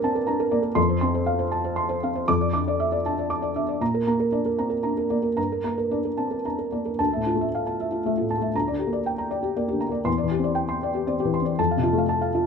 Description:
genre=neoclassical minimalist piano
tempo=118 BPM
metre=3/4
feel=rubato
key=unclear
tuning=A4 = 439 Hz
part: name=felt-muted upright piano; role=solo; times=0.0-12.5 s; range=D2 to D6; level=-22 LUFS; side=equal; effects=none
room=light reverb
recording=minimal, uncompressed stereo recording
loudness=-22 LUFS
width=side -6 dB against mid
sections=0.0-7.0 A section; 7.0-12.5 B section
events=none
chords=0.0 Gmadd9; 0.8 F; 2.3 Dmadd9/F; 3.8 Bb; 5.4 Gmadd9; 7.0 Dmadd9; 8.5 Gm/D; 10.1 Cadd9/E; 11.6 F

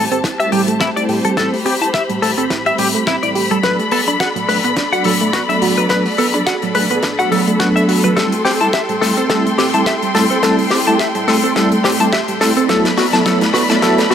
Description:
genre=nu-disco, nu disco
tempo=106 BPM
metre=4/4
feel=swing 56% on 16ths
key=A dorian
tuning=A4 = 439 Hz
part: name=mellow synth brass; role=accompaniment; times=0.0-14.0 s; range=F#3 to A4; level=-18 LUFS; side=right 1 dB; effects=chorus, sidechain pumping, digital delay
part: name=dark chamber string section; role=sustained chords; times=0.0-14.1 s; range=G4 to C6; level=-20 LUFS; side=left 1 dB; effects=sidechain pumping
part: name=soft round pluck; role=arpeggios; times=0.0-14.1 s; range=F#3 to G4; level=-20 LUFS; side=right 4 dB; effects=chorus, sidechain pumping, digital delay
part: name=direct-recorded clean electric guitar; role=riff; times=0.0-14.1 s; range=E4 to B5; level=-18 LUFS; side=left 3 dB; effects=analog chorus, low-pass filter, digital delay
part: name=hollow-body short-scale fingered electric bass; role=bass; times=0.0-14.1 s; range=G1 to A2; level=-33 LUFS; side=equal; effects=high-pass filter
part: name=damped 70s drum kit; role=drums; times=0.1-14.1 s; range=hi-hat, snare drum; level=-21 LUFS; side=left 2 dB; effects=high-pass filter on hats, high-pass filter on snare, high-pass filter on perc, high-pass filter on room
part: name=electronic kick drum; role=drums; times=0.2-14.0 s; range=none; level=-24 LUFS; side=equal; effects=overdrive, high-pass filter on kick, high-pass filter on room
room=moderate lush hall reverb, RT60 2.0 s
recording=none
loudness=-12 LUFS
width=side -8 dB against mid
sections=0.0-14.1 A section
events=build-up 0.0-14.1; drum fill 0.0-14.1; filter sweep on analog polysynth 0.0-14.1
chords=0.0 Am7; 3.6 Bm7/A; 8.2 Am7; 12.7 Bm7/A

